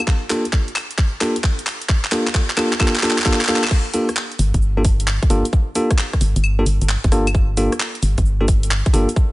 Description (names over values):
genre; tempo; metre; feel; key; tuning
UK garage, two-step garage; 132 BPM; 4/4; swing 67% on 16ths; G minor; A4 = 445 Hz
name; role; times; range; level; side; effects
garage drum kit; drums; 0.0-9.3 s; claves, crash cymbal, handclaps, hi-hat, rim click, shaker; -22 LUFS; equal; high-pass filter on hats, studio reverb, high-pass filter on snare, high-pass filter on perc, high-pass filter on cymbals
electronic kick drum; drums; 0.1-9.3 s; none; -17 LUFS; equal; studio reverb
bell-like tine electric piano; stabs; 0.3-9.1 s; Bb3 to A4; -21 LUFS; equal; vintage 12-bit sampler grit, low-pass filter, dub echo
organ-like FM bass; bass; 4.4-9.1 s; G1; -18 LUFS; equal; tube saturation
room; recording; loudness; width
light reverb; nothing above 10.9 kHz; -16 LUFS; side -19 dB against mid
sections
0.0-3.7 A section; 3.7-9.3 B section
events
build-up 0.0-3.7; drum fill 0.0-3.7; drop 3.7-9.3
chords
0.0 Gm9